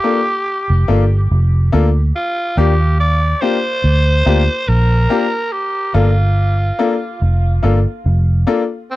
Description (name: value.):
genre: lovers rock reggae.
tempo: 71 BPM.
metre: 4/4.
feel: swing 55% on 16ths.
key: unclear.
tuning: A4 = 440 Hz.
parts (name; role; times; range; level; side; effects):
raspy tenor saxophone; melody; 0.0-9.0 s; C4 to D5; -20 LUFS; right 1 dB; tape echo.
clear grand piano; accompaniment; 0.0-8.6 s; Bb3 to A4; -17 LUFS; left 5 dB; none.
vintage muted fingered electric bass; bass; 0.7-8.4 s; F1 to Eb2; -13 LUFS; equal; none.
room: little or no reverb.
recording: dry, close 1970s-style studio recording.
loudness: -13 LUFS.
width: side -17 dB against mid.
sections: 0.0-9.0 A section.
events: none.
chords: 0.0 Gm7; 2.1 Ebmaj7; 5.5 Gm7.